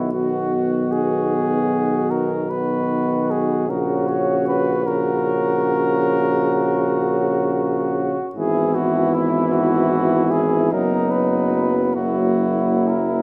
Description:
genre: classical, hymn-like piece for brass band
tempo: 42-53 BPM (dotted quarters)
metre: 12/8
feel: rubato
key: B major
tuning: A4 = 440 Hz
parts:
  - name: mellow cornet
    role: melody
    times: 0.0-13.2 s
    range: E4 to C#5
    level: -25 LUFS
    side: equal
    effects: none
  - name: mellow flugelhorn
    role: second line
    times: 0.0-13.2 s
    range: D#4 to F#4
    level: -27 LUFS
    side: equal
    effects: none
  - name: clear trombone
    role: accompaniment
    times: 0.0-13.2 s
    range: C#3 to F#3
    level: -29 LUFS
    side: equal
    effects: none
  - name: mellow euphonium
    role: accompaniment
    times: 0.0-13.2 s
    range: A#3 to C#4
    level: -28 LUFS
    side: equal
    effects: none
  - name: warm tuba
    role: bass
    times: 0.0-13.2 s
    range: F#1 to B1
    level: -26 LUFS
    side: equal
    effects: none
room: moderate scoring stage reverb, RT60 1.6 s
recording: none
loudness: -20 LUFS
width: mono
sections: 0.0-13.2 A section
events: none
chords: 0.0 B; 3.7 F#/A#; 8.4 E/G#; 10.7 B/F#; 12.0 F#7

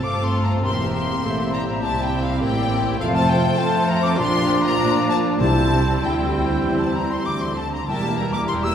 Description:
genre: quick classical-period movement for symphony orchestra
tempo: 99 BPM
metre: 4/4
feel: rubato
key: unclear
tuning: A4 = 440 Hz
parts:
  - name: rich chamber violin section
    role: melody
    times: 0.0-8.7 s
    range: F5 to E6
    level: -27 LUFS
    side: left 4 dB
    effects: none
  - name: mellow clarinet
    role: second line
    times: 0.0-8.7 s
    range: E4 to A4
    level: -31 LUFS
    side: right 3 dB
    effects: none
  - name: mellow hollow silver concert flute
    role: second line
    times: 0.0-8.7 s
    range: F5 to E6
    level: -28 LUFS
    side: left 2 dB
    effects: none
  - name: mellow oboe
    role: second line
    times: 0.0-8.7 s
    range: A4 to D5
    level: -30 LUFS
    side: equal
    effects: none
  - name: rich chamber violin section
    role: second line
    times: 0.0-8.7 s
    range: E4 to G5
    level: -31 LUFS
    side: left 3 dB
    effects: none
  - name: dark bassoon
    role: accompaniment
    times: 0.0-8.7 s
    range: F3 to C4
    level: -30 LUFS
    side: right 1 dB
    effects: none
  - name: rich chamber viola section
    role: accompaniment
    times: 0.0-8.7 s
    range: G3 to A4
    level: -29 LUFS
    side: right 1 dB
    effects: none
  - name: warm French horn section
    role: sustained chords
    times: 0.0-8.7 s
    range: F3 to E4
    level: -26 LUFS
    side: left 2 dB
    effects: none
  - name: rich chamber double bass section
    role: bass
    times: 0.0-8.7 s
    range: E1 to Bb2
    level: -27 LUFS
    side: right 2 dB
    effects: none
  - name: warm chamber cello section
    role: bass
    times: 0.0-8.7 s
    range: E2 to Bb3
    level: -26 LUFS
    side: right 2 dB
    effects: none
  - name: timpani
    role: percussion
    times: 5.4-6.3 s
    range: C3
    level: -26 LUFS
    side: left 1 dB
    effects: none
room: wet concert hall reverb, RT60 2.0 s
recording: heard from further back in the room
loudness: -18 LUFS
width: side -8 dB against mid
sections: 0.0-8.7 A section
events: none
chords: 0.0 F; 0.6 C7/E; 3.0 F; 4.2 Bb; 5.4 C; 7.9 Edim

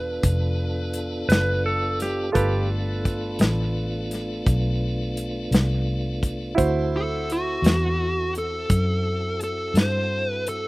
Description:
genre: slow blues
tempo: 57 BPM (dotted quarters)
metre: 12/8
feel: straight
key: G mixolydian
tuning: A4 = 440 Hz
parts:
  - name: clean lap steel guitar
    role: second line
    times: 0.0-2.7 s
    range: G4 to B4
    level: -27 LUFS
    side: right 1 dB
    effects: slapback echo
  - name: clear concert grand piano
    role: accompaniment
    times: 0.0-10.7 s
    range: E4 to C5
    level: -29 LUFS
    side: right 4 dB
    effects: none
  - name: tonewheel organ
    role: sustained chords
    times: 0.0-10.7 s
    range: A3 to A4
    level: -31 LUFS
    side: equal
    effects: slow rotary speaker, overdrive
  - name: vintage muted fingered electric bass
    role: bass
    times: 0.0-10.7 s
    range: E1 to G2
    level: -25 LUFS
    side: equal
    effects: none
  - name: natural country drum kit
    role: drums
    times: 0.2-10.6 s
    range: hi-hat, kick drum, snare drum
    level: -21 LUFS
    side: equal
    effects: none
  - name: dark smooth lead guitar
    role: melody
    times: 7.0-10.7 s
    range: F#4 to C5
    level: -26 LUFS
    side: equal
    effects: overdrive
room: little or no reverb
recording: recorded outdoors, with no room sound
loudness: -21 LUFS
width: side -22 dB against mid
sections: 0.0-10.7 A section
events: none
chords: 0.0 G9; 6.6 D9

